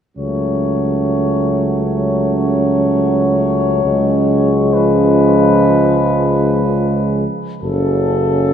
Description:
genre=classical, hymn-like piece for brass band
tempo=free time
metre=none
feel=none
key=F# minor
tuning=A4 = 442 Hz
part: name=mellow flugelhorn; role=melody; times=0.2-8.5 s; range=A4 to C#5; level=-20 LUFS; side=left 6 dB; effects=none
part: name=dark French horn section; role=second line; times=0.2-8.5 s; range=C#4 to F#4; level=-20 LUFS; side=right 7 dB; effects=none
part: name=clear euphonium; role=accompaniment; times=0.2-8.5 s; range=G#3 to C#4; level=-19 LUFS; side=left 3 dB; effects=none
part: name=clear trombone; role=accompaniment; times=0.2-8.5 s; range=C#3 to F#3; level=-21 LUFS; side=right 2 dB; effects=none
part: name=warm tuba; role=bass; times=0.2-8.5 s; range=F#1 to C#2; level=-17 LUFS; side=equal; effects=none
room=wet church reverb, RT60 3.1 s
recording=none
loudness=-12 LUFS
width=side -8 dB against mid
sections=0.2-7.6 A section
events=none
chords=0.2 F#m/C#; 3.8 C#7; 7.6 F#m

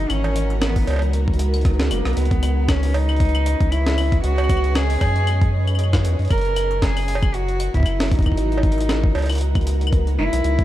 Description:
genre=IDM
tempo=116 BPM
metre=4/4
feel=swing 56% on 16ths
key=C# dorian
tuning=A4 = 441 Hz
part: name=warm cello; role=melody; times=0.0-10.6 s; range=A#3 to A#4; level=-25 LUFS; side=equal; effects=tape echo
part: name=granular cloud pad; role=sustained chords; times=0.0-10.6 s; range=G#3 to D#5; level=-28 LUFS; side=equal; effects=built-in reverb
part: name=warm sub bass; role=bass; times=0.0-10.6 s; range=F#1 to F#2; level=-20 LUFS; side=equal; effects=none
part: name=jungle sampler-style drum kit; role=drums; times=0.1-10.6 s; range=claves, cowbell, hi-hat, rim click, snare drum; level=-26 LUFS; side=equal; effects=overdrive
part: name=electronic kick drum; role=drums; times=0.8-10.6 s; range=none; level=-19 LUFS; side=equal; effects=overdrive
room=digital ambience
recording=dark, warm production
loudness=-17 LUFS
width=side -14 dB against mid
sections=0.0-2.2 A section; 2.2-10.6 A section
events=drum fill 1.6-2.2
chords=0.1 G#m7; 2.2 C#7(no3); 6.3 F#7; 8.4 G#m7

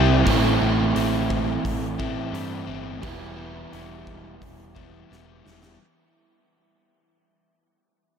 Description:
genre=rock, shoegaze and dream pop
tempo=87 BPM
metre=4/4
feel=straight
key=unclear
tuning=A4 = 440 Hz
part: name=overdriven electric guitar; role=riff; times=0.0-5.8 s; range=A2 to E4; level=-26 LUFS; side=right 9 dB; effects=reverse reverb
part: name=overdriven semi-hollow guitar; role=riff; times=0.0-5.8 s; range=A2 to E4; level=-26 LUFS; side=left 6 dB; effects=wide subtle chorus
part: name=growling picked electric bass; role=bass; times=0.0-5.8 s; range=E1 to G2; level=-26 LUFS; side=equal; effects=overdrive
part: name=gated 80s drum kit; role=drums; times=0.3-5.8 s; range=hi-hat, kick drum, snare drum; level=-30 LUFS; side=equal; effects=none
room=moderate huge ambient reverb, RT60 7.8 s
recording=dreamy mix soaked in reverb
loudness=-21 LUFS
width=side -7 dB against mid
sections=0.0-5.8 A section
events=fade-out 0.0-5.8; drum fill 5.1-5.8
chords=0.3 Am7; 3.0 Em

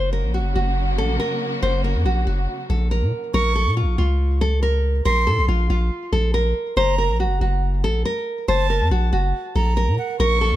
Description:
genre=hip hop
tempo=140 BPM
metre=4/4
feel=half-time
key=unclear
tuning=A4 = 440 Hz
part: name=nylon-string guitar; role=melody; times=0.0-10.6 s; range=F4 to C5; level=-24 LUFS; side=equal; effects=none
part: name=warm studio string section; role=sustained chords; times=0.0-3.3, 10.2-10.6 s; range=Db3 to Gb4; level=-29 LUFS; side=left 1 dB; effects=none
part: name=long sustained 808-style bass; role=bass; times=0.0-10.6 s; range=Gb1 to Bb2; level=-20 LUFS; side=equal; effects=none
part: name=breathy bright concert flute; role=second line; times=3.3-10.6 s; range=Gb5 to Db6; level=-25 LUFS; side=right 2 dB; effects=ping-pong delay
room=light reverb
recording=none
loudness=-18 LUFS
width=side -14 dB against mid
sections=0.0-3.3 A section; 3.3-10.6 B section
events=none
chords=0.0 Gb; 3.3 Bbm; 6.8 Gb

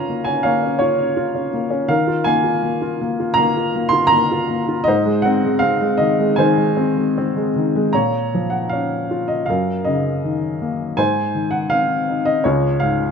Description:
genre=classical, lyrical solo piano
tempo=79 BPM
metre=4/4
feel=uneven beats, rubato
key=Bb minor from 7.9 s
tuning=A4 = 441 Hz
part: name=dark upright piano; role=solo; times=0.0-13.1 s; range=Db2 to C6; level=-16 LUFS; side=equal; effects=none
room=light reverb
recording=none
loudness=-16 LUFS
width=side -6 dB against mid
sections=0.0-7.9 A section; 7.9-13.1 B section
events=none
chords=0.0 Bbm/Db; 1.9 Ebsus2; 4.9 Ab; 7.9 Bbm; 9.5 Gb6; 11.0 Ab; 12.4 Db

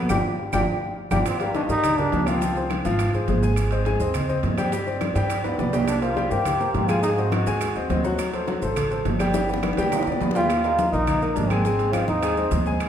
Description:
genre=latin, salsa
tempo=208 BPM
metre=4/4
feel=straight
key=unclear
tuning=A4 = 439 Hz
part: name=clear baby grand piano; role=accompaniment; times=0.0-12.9 s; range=Eb3 to Ab5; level=-25 LUFS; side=left 1 dB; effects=none
part: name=upright bass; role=bass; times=0.0-12.9 s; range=G1 to Ab2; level=-27 LUFS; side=right 1 dB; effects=none
part: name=bright trombone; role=melody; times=0.1-2.8, 5.9-8.0, 10.4-12.6 s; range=Bb3 to G4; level=-25 LUFS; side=left 1 dB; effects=none
part: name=bongos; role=percussion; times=0.1-12.9 s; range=none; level=-32 LUFS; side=left 4 dB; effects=none
part: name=claves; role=percussion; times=0.1-12.9 s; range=none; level=-39 LUFS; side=right 3 dB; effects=none
part: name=congas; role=percussion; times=0.1-12.9 s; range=none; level=-30 LUFS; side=equal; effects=none
part: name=maracas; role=percussion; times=0.1-12.9 s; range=none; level=-44 LUFS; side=right 6 dB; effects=none
part: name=timbales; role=percussion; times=0.1-12.9 s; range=none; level=-31 LUFS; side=right 5 dB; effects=none
room=wet recital hall reverb, RT60 1.6 s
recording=recorded in a church or concert hall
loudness=-20 LUFS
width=side -9 dB against mid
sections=0.0-1.3 A section; 1.3-10.5 A section; 10.5-12.9 B section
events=band accent 0.1-1.3; drum fill 0.4-1.3, 5.4-5.9, 9.3-10.5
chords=0.1 G5; 1.3 Ebmaj13; 2.4 Dbmaj7; 3.6 Abmaj7; 4.7 Gsus4; 5.3 G; 5.9 C5; 7.0 Ab7; 8.2 D7; 9.3 G; 10.5 Ebsus2; 11.7 Ab

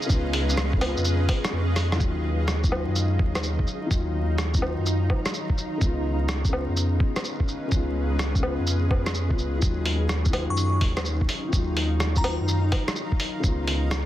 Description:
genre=future garage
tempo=126 BPM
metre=4/4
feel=swing 67% on 16ths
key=Eb minor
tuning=A4 = 440 Hz
part: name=felt-muted upright piano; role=accompaniment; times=0.0-14.1 s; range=Db3 to F4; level=-31 LUFS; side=left 4 dB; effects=sidechain pumping, tape echo
part: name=granular cloud pad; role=sustained chords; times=0.0-14.1 s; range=Db4 to Bb5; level=-33 LUFS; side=right 2 dB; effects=built-in reverb, sidechain pumping
part: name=lo-fi sampler-style drum kit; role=drums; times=0.0-14.0 s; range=hi-hat, rim click, shaker, woodblock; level=-29 LUFS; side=equal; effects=soft clipping on snare
part: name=warm sub bass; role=bass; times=0.1-14.1 s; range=Cb2 to Gb2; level=-25 LUFS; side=equal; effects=tube saturation, sidechain pumping
part: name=electronic kick drum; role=drums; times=0.1-13.6 s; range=none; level=-24 LUFS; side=equal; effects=none
part: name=glassy synth bell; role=melody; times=10.5-12.3 s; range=Bb5 to Db6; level=-35 LUFS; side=left 1 dB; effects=chorus, vintage 12-bit sampler grit, tape echo
room=little or no reverb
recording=dense, heavily limited modern master, vinyl crackle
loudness=-22 LUFS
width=side -13 dB against mid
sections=0.0-2.0 A section; 2.0-14.1 B section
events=kick drops out 1.5-2.0; drum fill 1.8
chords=0.0 Db7; 2.0 Ebmadd9; 5.8 Db7; 9.6 Ebmadd9; 13.4 Db7

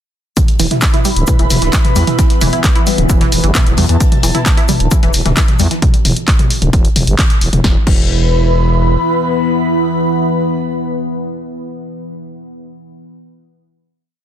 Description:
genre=driving peak-time techno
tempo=132 BPM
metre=4/4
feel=straight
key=unclear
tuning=A4 = 443 Hz
part: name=tight sequenced synth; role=riff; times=0.4-8.0 s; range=E3 to E4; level=-21 LUFS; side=right 1 dB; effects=chorus, sidechain pumping, digital delay
part: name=deep dark ambient pad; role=drone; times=1.6-12.0 s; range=E3 to B3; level=-20 LUFS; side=left 1 dB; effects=chorus, built-in reverb, sidechain pumping
part: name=compact cocktail drum kit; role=drums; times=0.4-5.8 s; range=hi-hat, shaker, snare drum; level=-28 LUFS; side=left 4 dB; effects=sidechain pumping on hats, high-pass filter on hats, high-pass filter on snare, sidechain pumping on perc, high-pass filter on perc, high-pass filter on room
part: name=electronic kick drum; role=drums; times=0.4-8.0 s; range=none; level=-12 LUFS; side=equal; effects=none
part: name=punchy analog drum machine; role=drums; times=0.4-8.0 s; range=crash cymbal, handclaps, hi-hat, snare drum, toms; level=-17 LUFS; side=left 1 dB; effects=sidechain pumping on hats, sidechain pumping on toms, sidechain pumping on cymbals
part: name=airy breathy pad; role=texture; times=0.8-12.0 s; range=E4 to B5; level=-20 LUFS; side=equal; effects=chorus, phaser, sidechain pumping
part: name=growling FM bass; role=bass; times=0.6-9.0 s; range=D1 to E2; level=-14 LUFS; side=equal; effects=sidechain pumping
room=light reverb, digital ambience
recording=dense, heavily limited modern master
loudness=-10 LUFS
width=side -10 dB against mid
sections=0.4-7.6 drop; 7.6-11.3 final chord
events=drop 0.4-7.6; band accent 7.2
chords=0.4 E5

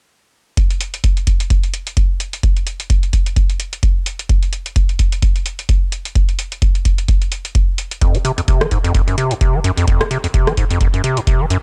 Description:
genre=acid house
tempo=129 BPM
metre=4/4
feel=swing 57% on 16ths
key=F phrygian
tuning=A4 = 440 Hz
part: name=booming analog drum machine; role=drums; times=0.6-11.6 s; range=hi-hat, rim click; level=-25 LUFS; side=equal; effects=none
part: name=electronic kick drum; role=drums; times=0.6-11.4 s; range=none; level=-17 LUFS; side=equal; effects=none
part: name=acid bass, square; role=riff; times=8.0-11.6 s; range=F2 to F3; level=-20 LUFS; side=equal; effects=tape echo
room=little or no reverb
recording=dry, gritty hardware recording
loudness=-17 LUFS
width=mono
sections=0.6-11.6 A section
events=none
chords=none

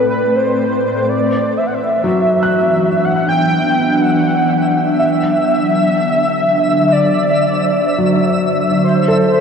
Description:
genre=ambient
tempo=62 BPM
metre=4/4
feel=straight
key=unclear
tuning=A4 = 441 Hz
part: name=warm velvety synth lead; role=melody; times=0.0-9.4 s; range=B4 to G5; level=-16 LUFS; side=equal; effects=chorus, shimmer reverb, ping-pong delay
part: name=ethereal airy pad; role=sustained chords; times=0.0-9.4 s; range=A2 to G5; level=-16 LUFS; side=equal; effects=ensemble chorus, built-in reverb, shimmer reverb
part: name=twinkling granular texture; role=texture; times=0.0-9.4 s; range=D5 to E6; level=-26 LUFS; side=left 1 dB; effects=built-in reverb, shimmer reverb
part: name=felt-muted upright piano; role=arpeggios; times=2.0-9.4 s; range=F#3 to F#6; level=-20 LUFS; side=left 1 dB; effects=ping-pong delay
room=wet huge ambient reverb, RT60 8.3 s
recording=worn, warbling old tape, cassette tape, warbly pitch drift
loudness=-12 LUFS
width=side -6 dB against mid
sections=0.0-1.1 A section; 1.1-9.4 B section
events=filter sweep on ambient pad 1.1-9.4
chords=0.0 Am7; 1.1 Esus2; 5.0 D9; 8.8 Am6/C

